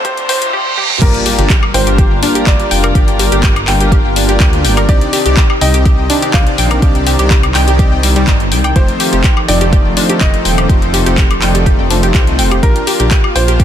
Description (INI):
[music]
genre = progressive house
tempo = 124 BPM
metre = 4/4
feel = straight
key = G minor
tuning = A4 = 439 Hz
[part]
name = dark baby grand piano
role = melody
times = 0.0-13.6 s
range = Bb4 to F5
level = -21 LUFS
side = right 1 dB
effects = sidechain pumping, digital delay
[part]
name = rich chamber string section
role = sustained chords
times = 0.0-13.6 s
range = Bb2 to Bb5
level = -22 LUFS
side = right 1 dB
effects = sidechain pumping
[part]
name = wide unison pluck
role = arpeggios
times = 0.0-13.6 s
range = G3 to G5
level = -18 LUFS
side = equal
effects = cassette tape, sidechain pumping, ping-pong delay
[part]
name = soft supersaw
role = stabs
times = 0.0-13.6 s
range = A3 to F5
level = -18 LUFS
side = left 2 dB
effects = sidechain pumping, ping-pong delay
[part]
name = electronic kick drum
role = drums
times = 0.0-13.6 s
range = none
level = -11 LUFS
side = equal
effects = none
[part]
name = house drum kit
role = drums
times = 0.0-13.6 s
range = crash cymbal, handclaps, hi-hat, toms, woodblock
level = -18 LUFS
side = left 3 dB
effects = none
[part]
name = riser, reverse cymbal and impact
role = sound effects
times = 0.0-3.0 s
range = none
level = -20 LUFS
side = right 2 dB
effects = none
[part]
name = dark detuned saw bass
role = bass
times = 1.0-13.6 s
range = Eb1 to D2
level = -15 LUFS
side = equal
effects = sidechain pumping
[sound]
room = light reverb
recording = dense, heavily limited modern master, high-pass filter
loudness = -9 LUFS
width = side -10 dB against mid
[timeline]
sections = 0.0-1.0 A section; 1.0-13.6 B section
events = build-up 0.0-1.0; riser 0.0-0.5; filter sweep 0.0-1.0; reverse cymbal 0.0-1.0; drum fill 0.8; drop 1.0-13.6; impact 1.0-3.0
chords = 0.0 Bb; 1.0 Gm7; 4.9 Cmadd9; 8.8 F7; 12.6 Bb